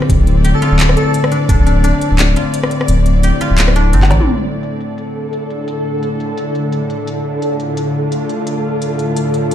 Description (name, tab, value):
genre	half-time drum and bass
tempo	172 BPM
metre	4/4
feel	swing 56% on 16ths, half-time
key	D minor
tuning	A4 = 435 Hz
part	bowed-like drone	sustained chords	0.0-9.5 s	A2 to D5	-17 LUFS	left 1 dB	built-in reverb, sidechain pumping
part	koto	arpeggios	0.0-6.5 s	C4 to D5	-22 LUFS	right 1 dB	tape echo
part	organic electronic drum kit	drums	0.0-9.5 s	handclaps, hi-hat, rim click, snare drum, toms	-20 LUFS	left 1 dB	overdrive, low-pass filter on hats, low-pass filter on snare, low-pass filter on toms
part	saturated sub bass	bass	0.1-4.2 s	D1 to A1	-12 LUFS	equal	none
part	electronic kick drum	drums	0.1-1.6 s	none	-12 LUFS	equal	none
part	airy dreamy lead	melody	0.5-1.1 s	A4	-23 LUFS	equal	chorus, digital delay
part	flickering grainy texture	texture	4.9-9.5 s	A4	-22 LUFS	equal	built-in reverb
room	light reverb, digital ambience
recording	played on a big sound system in a bare room, large studio reverb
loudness	-13 LUFS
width	side -11 dB against mid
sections	0.0-4.3 A section; 4.3-9.5 B section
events	drop 0.0-4.3; kick drops out 2.9-4.3; drum fill 4.1; filter sweep on drum 4.3-9.5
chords	0.0 D5